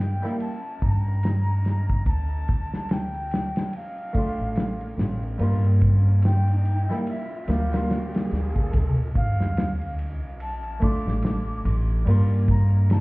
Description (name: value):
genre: trip hop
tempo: 72 BPM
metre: 4/4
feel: swing 59% on 16ths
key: D minor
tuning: A4 = 440 Hz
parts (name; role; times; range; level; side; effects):
- wooden flute; melody; 0.0-13.0 s; E5 to D6; -35 LUFS; equal; tape echo
- harpsichord; accompaniment; 0.0-13.0 s; G3 to G4; -30 LUFS; equal; harmonic tremolo, tape echo
- upright bass; bass; 0.0-13.0 s; A1 to G2; -22 LUFS; equal; none
- loose indie drum kit; drums; 0.0-13.0 s; kick drum, ride cymbal, snare drum; -27 LUFS; equal; none
- riser and sub drop; sound effects; 3.9-12.1 s; none; -32 LUFS; equal; none
room: studio reverb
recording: heard muffled through a wall, club reverb, vinyl crackle, EQ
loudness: -21 LUFS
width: side -23 dB against mid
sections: 0.0-8.7 A section; 8.7-13.0 B section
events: riser 3.9-8.7; impact 8.7-12.1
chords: 0.0 Gm; 2.1 Dm; 5.4 Gm7; 8.7 Dm; 12.1 Gm7